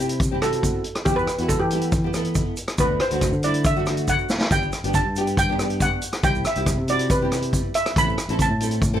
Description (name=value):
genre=calypso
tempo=139 BPM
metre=4/4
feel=straight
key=G major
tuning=A4 = 440 Hz
part: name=nylon-string guitar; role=accompaniment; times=0.0-9.0 s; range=A3 to A4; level=-28 LUFS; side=equal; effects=double-tracked left and right
part: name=fingered electric bass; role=bass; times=0.0-9.0 s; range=G1 to E3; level=-25 LUFS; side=equal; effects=none
part: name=tube shaker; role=percussion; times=0.0-8.9 s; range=none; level=-35 LUFS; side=right 6 dB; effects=none
part: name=street-band drum kit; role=drums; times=0.1-8.9 s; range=hi-hat, kick drum, rim click, snare drum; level=-24 LUFS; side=equal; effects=none
part: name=steel pan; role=melody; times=0.4-8.8 s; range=G4 to B5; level=-24 LUFS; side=right 1 dB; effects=analog delay
room=light reverb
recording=none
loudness=-19 LUFS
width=side -10 dB against mid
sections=0.0-9.0 A section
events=steel pan solo 0.0-9.0; drum fill 4.3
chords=0.0 C; 1.1 Em; 2.8 D; 4.5 G; 6.2 C; 8.0 Am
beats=0.20 0.64 | 1.07 1.50 1.93 2.36 | 2.79 3.22 3.65 4.08 | 4.52 4.95 5.38 5.81 | 6.24 6.67 7.10 7.53 | 7.96 8.39 8.82